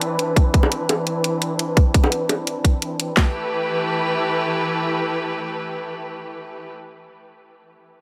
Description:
liquid drum and bass; 171 BPM; 4/4; straight; G major; A4 = 439 Hz
rich studio string section; sustained chords; 0.0-6.7 s; E3 to B4; -25 LUFS; equal; sidechain pumping, low-pass filter
electronic hi-hat; drums; 0.0-3.1 s; -26 LUFS; equal; overdrive
drum and bass drum kit; drums; 0.4-3.3 s; handclaps, kick drum, snare drum; -17 LUFS; equal; overdrive
bongos; percussion; 0.6-2.4 s; -26 LUFS; equal
light reverb, small room reverb; -21 LUFS; mono
0.0-3.2 A section; 3.2-6.0 B section
0.0 Cmaj9; 3.2 G69

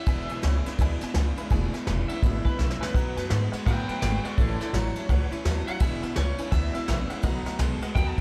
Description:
rockabilly; 168 BPM; 4/4; swing 62% on 8ths; E mixolydian; A4 = 444 Hz
electric guitar through a small old amp; melody; 0.0-8.2 s; F#4 to A5; -37 LUFS; equal; digital delay
honky-tonk upright piano; accompaniment; 0.0-8.2 s; B4 to B5; -42 LUFS; equal
picked steel-string acoustic guitar; accompaniment; 0.0-8.2 s; E2 to F#4; -39 LUFS; equal
electric guitar through a small old amp; riff; 0.1-8.2 s; E2 to G#3; -37 LUFS; equal; subtle chorus
upright bass; bass; 0.1-8.2 s; E1 to A2; -30 LUFS; equal
vintage brush drum kit; drums; 0.1-8.2 s; kick drum, ride cymbal, snare drum; -30 LUFS; equal
little or no reverb; -26 LUFS; mono
0.0-8.2 A section
clean electric guitar solo 0.0-8.2; drum fill 2.6-2.9
0.1 E7; 2.9 B7; 4.4 A7; 5.8 E7; 7.2 B7

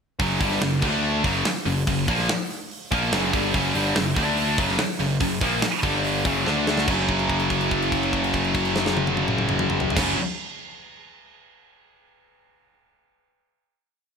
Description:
heavy metal; 144 BPM; 4/4; straight; A4 = 440 Hz
scooped high-gain guitar; riff; 0.2-10.2 s; F#2 to D4; -26 LUFS; left 10 dB; distortion
scooped high-gain guitar; riff; 0.2-10.2 s; F#2 to D4; -26 LUFS; right 11 dB; distortion
tight distorted guitar; riff; 0.2-10.2 s; F#2 to D4; -29 LUFS; left 1 dB; distortion
fuzz picked electric bass; bass; 0.2-10.1 s; F#1 to D2; -29 LUFS; equal; overdrive
tight metal drum kit; drums; 0.2-10.1 s; crash cymbal, hi-hat, kick drum, snare drum, toms; -27 LUFS; equal; gated reverb
light reverb, studio ambience; bright 1980s-style digital production; -20 LUFS; side -6 dB against mid
0.2-6.9 riff; 6.9-10.2 final chord
drum fill 6.5-6.9; held note 6.9-10.0
0.2 F#5; 0.8 D5; 1.2 F#; 4.2 D5; 4.6 F#; 5.8 G5; 6.3 F#5; 6.5 D5; 6.9 F#5

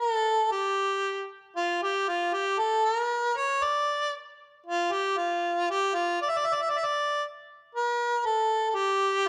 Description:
persian; 117 BPM; 3/4; straight; A4 = 439 Hz
warm harmonica; solo; 0.0-9.3 s; F4 to E5; -27 LUFS; equal
light reverb; dark, warm production; -27 LUFS; mono
0.0-7.7 A section; 7.7-9.3 B section

